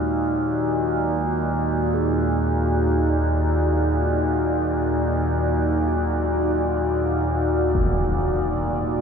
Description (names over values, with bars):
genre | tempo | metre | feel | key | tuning
dark ambient drone | free time | none | none | Eb harmonic minor | A4 = 440 Hz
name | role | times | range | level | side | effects
deep dark ambient pad | sustained chords | 0.0-9.0 s | Eb4 to D5 | -24 LUFS | equal | chorus, built-in reverb
overtone-sweeping drone | drone | 0.0-9.0 s | Eb2 to Bb2 | -22 LUFS | equal | chorus, built-in reverb
bronze singing bowl | texture | 0.0-9.0 s | Ab3 to Ab4 | -36 LUFS | right 3 dB | none
impact | percussion | 7.7-7.9 s | none | -26 LUFS | left 1 dB | low-pass filter on sfx
room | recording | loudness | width
wet huge ambient reverb, RT60 8.5 s | dark, warm production | -20 LUFS | side -6 dB against mid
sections
0.0-9.0 A section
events
none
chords
0.0 Ebm